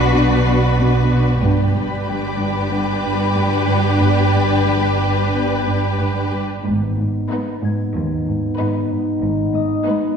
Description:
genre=cinematic, suspense film score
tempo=93 BPM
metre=4/4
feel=straight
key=G# harmonic minor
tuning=A4 = 441 Hz
part: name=warm symphonic violin section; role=melody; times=0.0-10.2 s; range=B4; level=-24 LUFS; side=left 3 dB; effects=none
part: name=warm symphonic violin section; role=second line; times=0.0-10.2 s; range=D#4 to G4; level=-25 LUFS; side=left 1 dB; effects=none
part: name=warm symphonic viola section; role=accompaniment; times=0.0-10.2 s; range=B3 to D4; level=-24 LUFS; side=left 2 dB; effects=none
part: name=warm symphonic cello section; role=bass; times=0.0-9.7 s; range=D#2 to B2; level=-24 LUFS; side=right 2 dB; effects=none
part: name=warm symphonic double bass section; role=bass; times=0.0-9.7 s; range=G1 to D#2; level=-22 LUFS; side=right 2 dB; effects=none
part: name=concert harp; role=texture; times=0.0-10.2 s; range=D#5 to G#6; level=-28 LUFS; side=left 3 dB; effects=none
part: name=dark symphonic violin section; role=texture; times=0.0-6.3 s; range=B5 to B#6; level=-31 LUFS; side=left 2 dB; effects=none
part: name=dark French horn section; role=sustained chords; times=0.1-10.2 s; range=B3 to D#4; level=-23 LUFS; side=left 2 dB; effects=none
part: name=dark symphonic cello section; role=riff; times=0.1-10.1 s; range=G2 to G#3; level=-22 LUFS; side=right 2 dB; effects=none
room=wet recital hall reverb, RT60 1.6 s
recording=recorded in a church or concert hall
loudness=-16 LUFS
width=side -6 dB against mid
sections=0.0-6.6 A section; 6.6-10.2 B section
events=none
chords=0.0 Bm; 1.4 G; 6.6 G#m

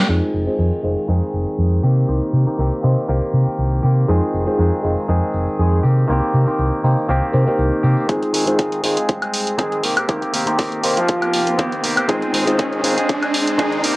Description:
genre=filtered disco house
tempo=120 BPM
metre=4/4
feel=swing 54% on 16ths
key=F minor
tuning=A4 = 440 Hz
part: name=overdriven clav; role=accompaniment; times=0.0-13.8 s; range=Ab3 to C5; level=-23 LUFS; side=equal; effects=phaser, sidechain pumping, low-pass filter, cassette tape
part: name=direct-recorded clean electric guitar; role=riff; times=0.0-14.0 s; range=Eb3 to Ab4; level=-22 LUFS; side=equal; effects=sidechain pumping, low-pass filter, cassette tape
part: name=hollow-body short-scale fingered electric bass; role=bass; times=0.1-14.0 s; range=F1 to C3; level=-17 LUFS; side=equal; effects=sidechain pumping, high-pass filter, low-pass filter
part: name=punchy analog drum machine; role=drums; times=0.1-0.2, 8.1-13.9 s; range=crash cymbal, hi-hat, woodblock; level=-21 LUFS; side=equal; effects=sidechain pumping on hats, low-pass filter on hats, cassette tape, sidechain pumping on perc, low-pass filter on perc, low-pass filter on snare, sidechain pumping on cymbals, low-pass filter on cymbals, low-pass filter on room
part: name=tambourine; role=percussion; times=4.1-8.1 s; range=none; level=-48 LUFS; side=equal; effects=none
part: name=clear horn section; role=melody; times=5.6-5.8, 9.6-13.8 s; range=F3 to Ab4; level=-22 LUFS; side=equal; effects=vintage 12-bit sampler grit, sidechain pumping, low-pass filter
part: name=electronic kick drum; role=drums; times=8.1-13.7 s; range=none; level=-20 LUFS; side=equal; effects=high-pass filter on kick, cassette tape, high-pass filter on room
part: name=riser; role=sound effects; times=10.2-14.0 s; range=none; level=-25 LUFS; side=right 1 dB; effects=none
room=moderate studio reverb, RT60 0.6 s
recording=home recording on cassette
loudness=-16 LUFS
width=side -22 dB against mid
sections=0.1-8.1 A section; 8.1-14.0 B section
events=band accent 0.0; filter sweep 0.1-8.1, 8.1-14.0; build-up 8.1-14.0; riser 10.2-14.0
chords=0.1 Fm7; 1.8 Cm7; 4.1 Fm7; 5.8 Cm7; 8.1 Fm7; 9.8 Cm7; 12.1 Fm7

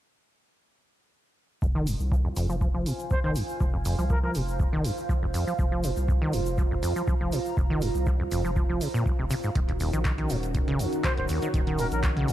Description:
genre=acid house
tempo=121 BPM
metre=4/4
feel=straight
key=F phrygian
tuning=A4 = 441 Hz
part: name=acid bass, saw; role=riff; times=1.6-12.3 s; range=F1 to F3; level=-29 LUFS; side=equal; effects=tube saturation, digital delay
part: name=saturated sub bass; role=bass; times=1.6-12.3 s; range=Eb1 to C2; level=-31 LUFS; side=equal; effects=sidechain pumping
part: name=electronic kick drum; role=drums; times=1.6-12.1 s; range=none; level=-27 LUFS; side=equal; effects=none
part: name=egg shaker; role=percussion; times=1.6-12.3 s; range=none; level=-45 LUFS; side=left 4 dB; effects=none
part: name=warbly tape-like pad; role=texture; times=2.3-12.3 s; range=Eb4 to Bb5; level=-34 LUFS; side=right 3 dB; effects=chorus, built-in reverb, phaser, sidechain pumping
part: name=punchy analog drum machine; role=drums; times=1.9-12.3 s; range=handclaps, hi-hat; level=-38 LUFS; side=right 1 dB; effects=none
part: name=silver concert flute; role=melody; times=3.1-4.3, 11.0-12.0 s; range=Bb4 to C5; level=-34 LUFS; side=equal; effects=digital delay
part: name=lush unison pad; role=sustained chords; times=9.6-12.3 s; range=Eb3 to Gb4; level=-34 LUFS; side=right 2 dB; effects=chorus, phaser, sidechain pumping
room=digital ambience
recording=none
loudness=-24 LUFS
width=side -13 dB against mid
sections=1.6-12.3 A section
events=filter sweep on acid bass 1.6-12.3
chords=1.6 Fm; 9.6 Ebm7

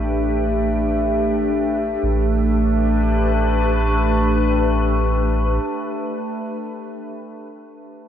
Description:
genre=ambient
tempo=free time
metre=none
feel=none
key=unclear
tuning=A4 = 444 Hz
part: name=glassy FM pad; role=sustained chords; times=0.0-6.9 s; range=A3 to B4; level=-22 LUFS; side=equal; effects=ensemble chorus, built-in reverb
part: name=warm sub bass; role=bass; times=0.0-5.6 s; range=A1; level=-21 LUFS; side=equal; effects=none
part: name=overtone-sweeping drone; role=drone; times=0.0-6.4 s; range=A3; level=-24 LUFS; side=equal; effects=chorus, built-in reverb
room=wet cathedral reverb, RT60 6.2 s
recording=dark, warm production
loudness=-17 LUFS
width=side -9 dB against mid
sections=0.0-2.0 A section; 2.0-6.8 B section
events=none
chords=0.0 G/A

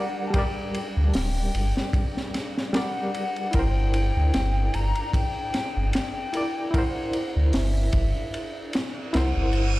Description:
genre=trip hop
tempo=75 BPM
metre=4/4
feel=swing 55% on 16ths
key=unclear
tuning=A4 = 440 Hz
part: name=breathy hollow jazz flute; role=melody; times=0.0-9.8 s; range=E5 to Bb5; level=-33 LUFS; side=left 3 dB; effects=tape echo
part: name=barky reed electric piano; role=accompaniment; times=0.0-9.8 s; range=G3 to D5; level=-30 LUFS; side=equal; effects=overdrive, fast tremolo, tape echo
part: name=flickering grainy texture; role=texture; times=0.0-9.8 s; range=D4 to D5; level=-39 LUFS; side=left 1 dB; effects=built-in reverb
part: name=crunchy breakbeat drum kit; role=drums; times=0.3-9.7 s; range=hi-hat, kick drum, ride cymbal, snare drum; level=-28 LUFS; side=equal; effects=none
part: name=warm sub bass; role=bass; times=1.0-9.8 s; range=D1 to D2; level=-22 LUFS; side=equal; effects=tube saturation
part: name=reverse cymbal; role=sound effects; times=8.7-9.8 s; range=none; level=-34 LUFS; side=right 6 dB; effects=none
room=small room ambience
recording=played on a big sound system in a bare room, large studio reverb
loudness=-23 LUFS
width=side -18 dB against mid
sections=0.0-9.8 A section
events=reverse cymbal 8.7-9.8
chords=0.0 Gm; 3.5 C7/G

